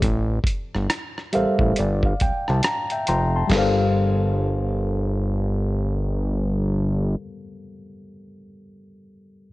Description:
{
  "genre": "R&B, neo-soul",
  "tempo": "69 BPM",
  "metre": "4/4",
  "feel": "swing 62% on 16ths",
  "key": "G dorian",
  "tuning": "A4 = 440 Hz",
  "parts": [
    { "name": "tine electric piano", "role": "accompaniment", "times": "0.0-9.5 s", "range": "G3 to C6", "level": "-25 LUFS", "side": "left 1 dB", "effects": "auto-pan" },
    { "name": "fat analog bass", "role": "bass", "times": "0.0-7.2 s", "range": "F1 to C2", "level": "-22 LUFS", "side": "equal", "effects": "none" },
    { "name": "dusty soul sampler-style drum kit", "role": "drums", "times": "0.0-3.8 s", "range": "crash cymbal, hi-hat, kick drum, rim click, snare drum", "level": "-24 LUFS", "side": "equal", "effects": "none" }
  ],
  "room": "light reverb, digital ambience",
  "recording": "worn, warbling old tape, cassette tape, warbly pitch drift",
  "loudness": "-20 LUFS",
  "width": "side -18 dB against mid",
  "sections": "0.0-3.5 A section; 3.5-7.0 B section",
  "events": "tine electric piano fill 0.9-3.5",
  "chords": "0.0 Am7; 1.8 G7sus4; 3.5 Gm11"
}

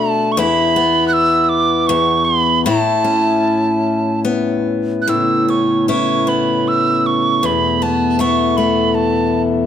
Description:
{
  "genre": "celtic folk, Celtic slow air",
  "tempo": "72-83 BPM",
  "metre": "3/4",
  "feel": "rubato",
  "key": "A major",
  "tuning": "A4 = 440 Hz",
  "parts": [
    { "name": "mellow hollow tin whistle", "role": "melody", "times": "0.0-9.4 s", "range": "A5 to F#6", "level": "-17 LUFS", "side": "right 4 dB", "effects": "none" },
    { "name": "picked steel-string acoustic guitar", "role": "accompaniment", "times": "0.0-9.7 s", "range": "E2 to F#4", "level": "-16 LUFS", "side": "left 3 dB", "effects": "none" },
    { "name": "pipe organ, flutes", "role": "sustained chords", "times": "5.1-9.7 s", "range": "E2 to B3", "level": "-23 LUFS", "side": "right 4 dB", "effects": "none" }
  ],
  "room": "light reverb",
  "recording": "close, detailed microphones",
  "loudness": "-13 LUFS",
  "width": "side -9 dB against mid",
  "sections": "0.0-5.1 A section; 5.1-9.7 B section",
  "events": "none",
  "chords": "0.4 E5; 1.9 N.C.; 2.7 Aadd9; 7.4 Esus4"
}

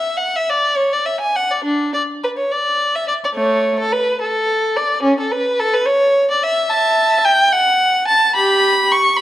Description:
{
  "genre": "classical, baroque-style suite movement for unaccompanied violin",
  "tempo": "72 BPM (dotted quarters)",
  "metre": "6/8",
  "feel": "rubato",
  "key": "A major",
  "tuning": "A4 = 440 Hz",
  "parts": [
    { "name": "warm violin", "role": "solo", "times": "0.0-9.2 s", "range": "A3 to C#6", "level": "-14 LUFS", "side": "equal", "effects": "none" }
  ],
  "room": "moderate recital hall reverb, RT60 1.6 s",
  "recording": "none",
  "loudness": "-14 LUFS",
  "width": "side -13 dB against mid",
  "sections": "0.0-9.2 A section",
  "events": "none",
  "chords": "none"
}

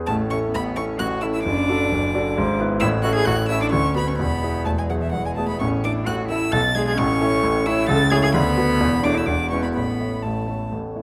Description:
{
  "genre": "quick classical-period movement for piano trio",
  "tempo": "130 BPM",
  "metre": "3/4",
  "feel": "straight",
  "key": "A major",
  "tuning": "A4 = 440 Hz",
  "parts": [
    { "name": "warm grand piano", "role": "accompaniment", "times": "0.0-11.0 s", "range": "E1 to D5", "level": "-23 LUFS", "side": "equal", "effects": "none" },
    { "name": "rich violin", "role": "melody", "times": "0.1-10.7 s", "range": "E5 to A6", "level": "-29 LUFS", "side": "equal", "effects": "none" },
    { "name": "rich cello", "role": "second line", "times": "0.1-10.7 s", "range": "E3 to A4", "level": "-28 LUFS", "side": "equal", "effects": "none" }
  ],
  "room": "moderate scoring stage reverb, RT60 1.6 s",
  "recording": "close, detailed microphones",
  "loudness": "-21 LUFS",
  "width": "mono",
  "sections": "0.1-11.0 A section",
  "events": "none",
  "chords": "0.1 A; 1.5 D/F#; 2.4 E7/G#; 2.8 A; 3.7 Bm/D; 4.2 E; 5.6 A5; 6.5 G#dim/B; 7.0 A; 7.9 A/C#; 8.3 Bm7/D; 8.8 A/E; 9.3 E7; 9.8 A"
}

